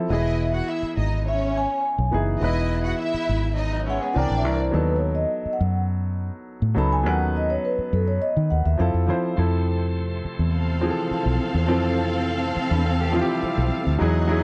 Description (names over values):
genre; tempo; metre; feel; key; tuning
soul; 104 BPM; 4/4; straight; unclear; A4 = 440 Hz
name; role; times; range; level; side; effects
vibraphone with soft mallets; melody; 0.0-9.3 s; A4 to B5; -29 LUFS; equal; none
warm grand piano; accompaniment; 0.0-14.4 s; E3 to C5; -29 LUFS; equal; none
fingered electric bass; bass; 0.0-14.4 s; E1 to F3; -25 LUFS; equal; none
warm studio string section; second line; 0.1-4.6, 10.5-14.4 s; C4 to F#5; -31 LUFS; equal; none
electric guitar through a small old amp; riff; 3.7-4.3, 12.7-14.0 s; F#3 to B4; -34 LUFS; equal; none
bright tonewheel organ; sustained chords; 9.4-14.4 s; B2 to A4; -37 LUFS; equal; fast rotary speaker, overdrive
room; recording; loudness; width
studio ambience; dark, warm production, nothing above 10.9 kHz, faint mains hum; -23 LUFS; mono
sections
0.0-9.4 A section; 9.4-14.0 B section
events
vibraphone solo 0.0-9.4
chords
0.1 Emaj7; 4.2 C9; 4.7 B7/D#; 8.8 Fmaj7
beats
| 0.10 0.68 1.26 1.84 | 2.42 3.00 3.58 4.16 | 4.74 5.32 5.90 6.47 | 7.05 7.63 8.21 8.79 | 9.37 9.95 10.53 11.11 | 11.69 12.27 12.84 13.42 | 14.00